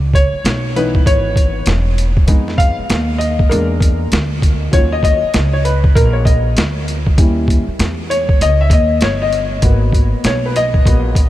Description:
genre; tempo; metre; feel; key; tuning
hip hop, jazz-hop; 98 BPM; 4/4; swing 63% on 16ths; unclear; A4 = 440 Hz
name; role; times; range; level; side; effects
upright bass; bass; 0.0-11.3 s; E1 to F2; -16 LUFS; equal; none
dark grand piano; accompaniment; 0.1-11.3 s; E3 to F5; -18 LUFS; left 2 dB; lush chorus
boom bap sampler-style drum kit; drums; 0.1-11.3 s; hi-hat, kick drum, snare drum; -14 LUFS; equal; overdrive
room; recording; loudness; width
light reverb; none; -12 LUFS; side -14 dB against mid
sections
0.0-11.3 A section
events
grand piano solo 0.0-11.3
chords
0.0 C#m7; 2.3 Fm7b5; 3.5 E7#11; 4.7 D#m7; 7.2 D#7b9; 9.6 G#m9

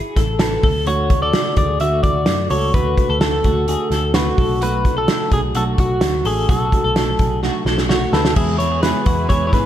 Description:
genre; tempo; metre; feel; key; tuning
jangly indie pop; 128 BPM; 4/4; straight; unclear; A4 = 440 Hz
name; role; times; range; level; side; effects
twelve-string electric guitar; arpeggios; 0.0-9.7 s; E4 to C#5; -26 LUFS; left 4 dB; tremolo, slapback echo
vintage muted picked electric bass; bass; 0.2-9.7 s; A1 to G#2; -22 LUFS; equal; none
loose indie drum kit; drums; 0.2-9.6 s; crash cymbal, hi-hat, kick drum, snare drum; -18 LUFS; equal; none
electric guitar at the edge of break-up; melody; 0.4-9.7 s; F#4 to E5; -21 LUFS; left 1 dB; slapback echo
fingerpicked steel-string acoustic guitar; accompaniment; 0.9-9.7 s; E2 to G#4; -25 LUFS; right 5 dB; none
lush unison pad; sustained chords; 8.4-9.7 s; E3 to B4; -30 LUFS; left 1 dB; chorus
room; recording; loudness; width
light reverb; none; -15 LUFS; side -11 dB against mid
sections
0.0-8.4 A section; 8.4-9.7 B section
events
drum fill 7.4-8.4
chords
0.0 N.C.; 0.6 D; 4.4 Bm7; 8.4 E

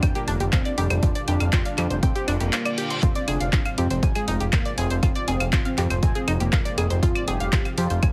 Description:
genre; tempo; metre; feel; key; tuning
melodic techno; 120 BPM; 4/4; straight; F dorian; A4 = 440 Hz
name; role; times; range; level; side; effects
unison lead; melody; 0.0-8.1 s; Ab3 to G4; -33 LUFS; equal; subtle chorus, cassette tape, sidechain pumping, dub echo
lush unison pad; sustained chords; 0.0-8.1 s; Ab2 to G4; -36 LUFS; equal; chorus, sidechain pumping
analog pluck; arpeggios; 0.0-8.1 s; D4 to Ab6; -32 LUFS; equal; chorus, sidechain pumping, digital delay
fat analog bass; bass; 0.0-8.1 s; F1 to F2; -27 LUFS; equal; sidechain pumping
electronic kick drum; drums; 0.0-8.1 s; none; -24 LUFS; equal; none
punchy analog drum machine; drums; 0.0-8.1 s; claves, handclaps, hi-hat; -31 LUFS; equal; none
reverse cymbal; sound effects; 2.2-3.0 s; none; -36 LUFS; equal; none
room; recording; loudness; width
little or no reverb; heavily compressed radio sound; -23 LUFS; mono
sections
0.0-8.1 A section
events
reverse cymbal 2.2-3.0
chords
0.0 Gm/F; 3.0 Fm

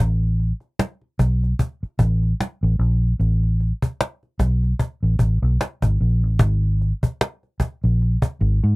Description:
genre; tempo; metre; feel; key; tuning
R&B, neo-soul; 75 BPM; 4/4; swing 57% on 16ths; unclear; A4 = 440 Hz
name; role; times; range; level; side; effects
vintage muted fingered electric bass; bass; 0.0-8.8 s; Ab1 to Ab2; -17 LUFS; equal; none
cajon; drums; 0.2-8.7 s; none; -19 LUFS; equal; none
room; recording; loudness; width
little or no reverb; dry, close 1970s-style studio recording; -19 LUFS; side -25 dB against mid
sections
0.0-6.4 A section; 6.4-8.8 B section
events
none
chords
none

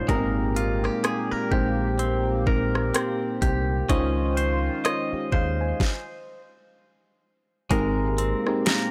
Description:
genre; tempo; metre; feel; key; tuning
contemporary R&B; 63 BPM; 4/4; swing 58% on 16ths; Ab major; A4 = 439 Hz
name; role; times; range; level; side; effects
mellow FM electric piano; accompaniment; 0.0-8.9 s; Ab3 to Ab5; -30 LUFS; equal; chorus
chorused pulse-width pad; sustained chords; 0.0-8.9 s; Bb2 to C5; -35 LUFS; equal; none
direct-recorded clean electric guitar; arpeggios; 0.0-8.9 s; Ab3 to Eb5; -31 LUFS; equal; spring reverb, analog delay
deep dub fingered electric bass; bass; 0.1-8.3 s; Ab1 to Eb2; -29 LUFS; equal; none
smooth R&B drum kit; drums; 0.1-8.9 s; hi-hat, kick drum, rim click, snare drum; -27 LUFS; equal; none
room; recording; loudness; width
little or no reverb; dry, gritty hardware recording; -24 LUFS; mono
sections
0.0-7.7 A section; 7.7-8.9 B section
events
stop 5.8-7.7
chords
0.1 Abmaj9; 3.9 Dbmaj9; 7.7 Abmaj9

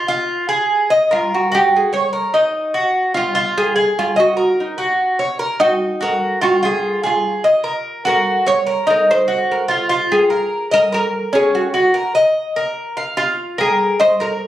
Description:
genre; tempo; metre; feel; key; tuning
latin; 147 BPM; 4/4; straight; unclear; A4 = 440 Hz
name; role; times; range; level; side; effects
Cuban tres; arpeggios; 0.0-14.5 s; Db4 to F5; -16 LUFS; equal; none
oud; melody; 1.1-14.5 s; Eb4 to Db5; -17 LUFS; right 1 dB; none
room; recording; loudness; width
wet studio reverb, RT60 0.5 s; recorded on a phone in the room, club reverb; -14 LUFS; side -12 dB against mid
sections
0.0-9.9 A section; 9.9-14.5 B section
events
oud solo 0.0-9.9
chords
0.1 Fm; 0.9 Ebm; 1.7 Gb; 2.5 Ebm; 3.4 Fm; 4.2 Ebm; 5.0 Gb; 5.8 Ebm; 6.6 Fm; 7.4 Ebm; 8.3 Gb; 9.1 Ebm; 9.9 Bb5; 10.7 Eb5; 11.5 Gb; 12.4 Eb5; 13.2 Bb5

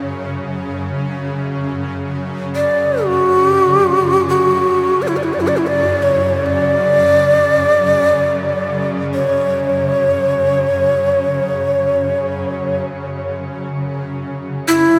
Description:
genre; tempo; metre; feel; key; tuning
world meditative, free-time meditation music; free time; none; none; unclear; A4 = 441 Hz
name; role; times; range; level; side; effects
shimmering ambient pad; drone; 0.0-15.0 s; F#2 to C#3; -24 LUFS; equal; chorus, built-in reverb
breathy low Native American-style wooden flute; melody; 2.6-15.0 s; E4 to D5; -16 LUFS; equal; shimmer reverb, diffuse ambient delay
room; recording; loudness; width
wet cathedral reverb, RT60 4.1 s; none; -16 LUFS; mono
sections
0.0-15.0 A section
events
none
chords
none

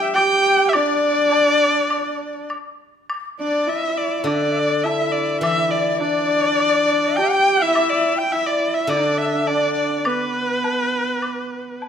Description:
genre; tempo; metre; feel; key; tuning
chinese traditional, Chinese chamber ensemble; 103 BPM; 4/4; rubato; unclear; A4 = 440 Hz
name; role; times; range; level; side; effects
bright reedy dizi; second line; 0.0-11.8 s; B4 to G5; -23 LUFS; left 7 dB; none
rich horsehead fiddle; second line; 0.0-11.8 s; B3 to G4; -24 LUFS; right 3 dB; none
steel-string zither; accompaniment; 0.0-0.2, 4.2-10.6 s; D3 to G4; -27 LUFS; left 2 dB; none
clear erhu; melody; 0.1-11.8 s; B4 to G5; -20 LUFS; right 1 dB; none
woodblock; percussion; 0.2-11.9 s; none; -28 LUFS; left 2 dB; none
room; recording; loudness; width
moderate recital hall reverb, RT60 1.4 s; close, detailed microphones; -16 LUFS; side -8 dB against mid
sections
0.0-3.1 A section; 3.1-11.9 B section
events
none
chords
none

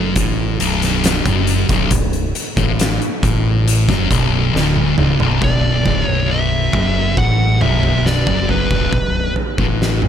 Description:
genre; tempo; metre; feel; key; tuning
stoner and doom metal; 68 BPM; 4/4; straight; B minor; A4 = 439 Hz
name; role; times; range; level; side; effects
ensemble organ-string; sustained chords; 0.0-10.1 s; D3 to B3; -30 LUFS; left 1 dB; none
thick fuzz guitar; riff; 0.0-10.0 s; B1 to A2; -20 LUFS; left 8 dB; distortion
thick fuzz guitar; riff; 0.0-10.0 s; B1 to A2; -21 LUFS; right 6 dB; distortion
growling fingered electric bass; bass; 0.0-10.0 s; B0 to A1; -21 LUFS; equal; overdrive
oversized low-tuned drum kit; drums; 0.2-10.1 s; hi-hat, kick drum, snare drum, toms; -19 LUFS; equal; none
fuzz lead guitar; melody; 5.4-9.3 s; B4 to F#5; -21 LUFS; equal; distortion, tape echo
room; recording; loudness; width
little or no reverb; none; -14 LUFS; side -9 dB against mid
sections
0.0-5.4 A section; 5.4-10.1 B section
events
drum fill 4.5-5.4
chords
0.0 Bm

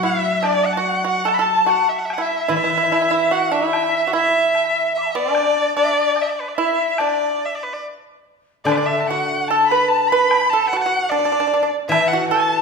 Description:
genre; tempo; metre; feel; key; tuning
chinese traditional, Chinese chamber ensemble; 74 BPM; 2/4; rubato; D gong mode; A4 = 440 Hz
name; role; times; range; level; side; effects
clear erhu; melody; 0.0-12.6 s; B4 to B5; -21 LUFS; equal; none
mellow dizi; second line; 0.0-12.6 s; D5 to D6; -20 LUFS; left 4 dB; none
pipa; second line; 0.0-12.6 s; D4 to B4; -21 LUFS; right 6 dB; none
steel-string zither; accompaniment; 0.0-4.9, 8.7-12.6 s; D3 to F#3; -27 LUFS; left 4 dB; none
woodblock; percussion; 0.4-12.1 s; none; -28 LUFS; left 2 dB; none
room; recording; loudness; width
wet recital hall reverb, RT60 1.4 s; minimal, uncompressed stereo recording; -16 LUFS; side -4 dB against mid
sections
0.0-8.7 A section; 8.7-12.6 B section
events
none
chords
none

